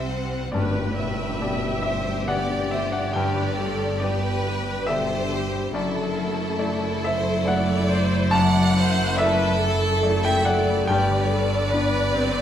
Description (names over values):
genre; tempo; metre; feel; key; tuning
cinematic, emotional film score for orchestra; 70 BPM; 3/4; rubato; G major; A4 = 437 Hz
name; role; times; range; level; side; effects
rich symphonic violin section; melody; 0.0-12.4 s; E4 to F#5; -33 LUFS; left 2 dB; none
clear studio violin section; second line; 0.0-12.4 s; C4 to F#5; -28 LUFS; equal; none
clear grand piano; accompaniment; 0.0-12.4 s; F#2 to A5; -26 LUFS; left 1 dB; none
rich symphonic viola section; accompaniment; 0.0-12.4 s; G3 to E5; -29 LUFS; equal; none
concert harp; arpeggios; 0.0-12.4 s; F#2 to D5; -31 LUFS; left 7 dB; none
rich symphonic cello section; bass; 0.0-12.4 s; F#2 to C3; -29 LUFS; right 1 dB; none
rich symphonic double bass section; bass; 0.0-12.4 s; F#1 to C2; -28 LUFS; right 3 dB; none
tam-tam; percussion; 0.5-4.0 s; none; -34 LUFS; equal; none
room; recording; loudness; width
moderate scoring stage reverb, RT60 1.5 s; close, detailed microphones; -20 LUFS; side -10 dB against mid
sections
0.5-12.4 A section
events
band accent 0.5-1.4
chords
0.0 C; 0.5 G; 5.7 Dadd9/F#; 10.9 G